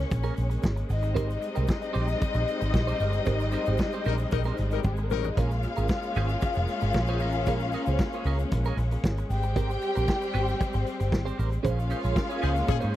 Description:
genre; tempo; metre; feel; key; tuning
disco; 114 BPM; 4/4; straight; Bb dorian; A4 = 440 Hz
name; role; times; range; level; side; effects
dark studio string section; second line; 0.0-13.0 s; G3 to G5; -32 LUFS; left 3 dB; none
clear studio string section; sustained chords; 0.0-13.0 s; G3 to Db4; -34 LUFS; left 1 dB; none
picked electric bass; bass; 0.0-12.9 s; F1 to Bb2; -27 LUFS; equal; none
vintage drum kit; drums; 0.0-12.9 s; hi-hat, kick drum, snare drum, toms; -28 LUFS; equal; none
clean electric guitar; accompaniment; 0.1-13.0 s; C4 to Db5; -34 LUFS; right 8 dB; wah
egg shaker; percussion; 0.1-12.9 s; none; -57 LUFS; right 23 dB; none
warm horn section; stabs; 4.1-5.3, 12.4-12.8 s; F3 to Bb4; -30 LUFS; left 21 dB; none
room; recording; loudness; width
little or no reverb; dry, close 1970s-style studio recording; -24 LUFS; side -13 dB against mid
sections
0.0-13.0 A section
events
band accent 3.3-5.4, 11.6-13.0; drum fill 4.8-5.4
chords
0.0 Bbm7; 0.9 Abmaj9; 5.4 Bbm7; 9.3 Abmaj9; 11.6 Bbm9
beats
0.12 0.64 | 1.17 1.69 2.22 2.74 | 3.27 3.79 4.32 4.84 | 5.37 5.89 6.42 6.94 | 7.47 7.99 8.52 9.04 | 9.56 10.08 10.60 11.12 | 11.64 12.16 12.69

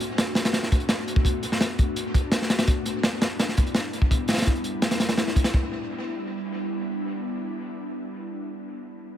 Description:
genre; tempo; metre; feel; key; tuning
drum and bass, jungle; 168 BPM; 4/4; straight; E minor; A4 = 440 Hz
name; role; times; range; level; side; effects
ethereal airy pad; sustained chords; 0.0-8.6 s; G3 to F#4; -30 LUFS; left 1 dB; ensemble chorus, built-in reverb
crunchy breakbeat drum kit; drums; 0.0-5.6 s; hi-hat, kick drum, snare drum; -22 LUFS; equal; dub echo
room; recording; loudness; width
light reverb; echo-heavy mix; -22 LUFS; side -10 dB against mid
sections
0.0-5.5 A section; 5.5-8.4 B section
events
none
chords
0.0 Bm7; 2.7 Em7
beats
0.18 0.54 0.89 | 1.25 1.61 1.97 2.32 | 2.68 3.04 3.39 3.75 | 4.11 4.46 4.82 5.18 | 5.54 5.89 6.25 6.61 | 6.96 7.32 7.68 8.04

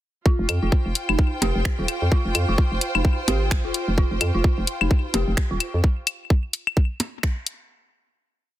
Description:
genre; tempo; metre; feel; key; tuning
minimal techno; 129 BPM; 4/4; swing 58% on 16ths; F minor; A4 = 441 Hz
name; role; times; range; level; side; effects
dark detuned synth bell; riff; 0.3-5.5 s; Eb4 to G4; -30 LUFS; right 1 dB; chorus, phaser, sidechain pumping, ping-pong delay
electronic kick drum; drums; 0.3-7.3 s; none; -20 LUFS; equal; none
clear symphonic string section; texture; 0.3-5.8 s; F4 to G5; -30 LUFS; right 1 dB; sidechain pumping
hollow knocking FM bass; bass; 0.4-5.8 s; Eb1 to F2; -23 LUFS; equal; sidechain pumping
garage drum kit; drums; 0.5-7.6 s; finger snaps, hi-hat; -26 LUFS; left 2 dB; soft clipping on snare
claves and percussion blips; percussion; 0.5-7.1 s; none; -26 LUFS; left 4 dB; ping-pong delay
room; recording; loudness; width
digital ambience; dense, heavily limited modern master; -20 LUFS; side -14 dB against mid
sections
0.3-7.7 groove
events
none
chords
0.3 F5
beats
| 0.26 0.72 1.19 1.65 | 2.12 2.58 3.05 3.51 | 3.98 4.44 4.91 5.37 | 5.84 6.30 6.77 7.23

